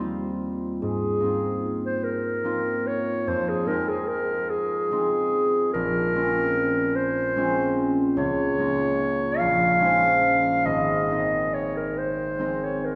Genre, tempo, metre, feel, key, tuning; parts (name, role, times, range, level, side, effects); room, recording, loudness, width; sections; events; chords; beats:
classical, impressionist duo for clarinet and harp; 49 BPM (dotted quarters); 6/8; rubato; Bb minor; A4 = 440 Hz
concert harp; accompaniment; 0.0-13.0 s; Ab1 to C5; -28 LUFS; equal
mellow clarinet; melody; 0.8-13.0 s; Ab4 to F5; -26 LUFS; equal
wet church reverb, RT60 2.5 s; recorded in a church or concert hall; -24 LUFS; mono
0.0-13.0 A section
0.0 Eb69; 0.8 Ab69; 3.3 Fm7; 5.8 Bbm9; 8.2 Db69; 9.4 Bbm11; 10.7 Abadd9
| 0.81 2.05 | 3.27 4.51 | 5.75 6.97 | 8.18 9.40 | 10.66 11.97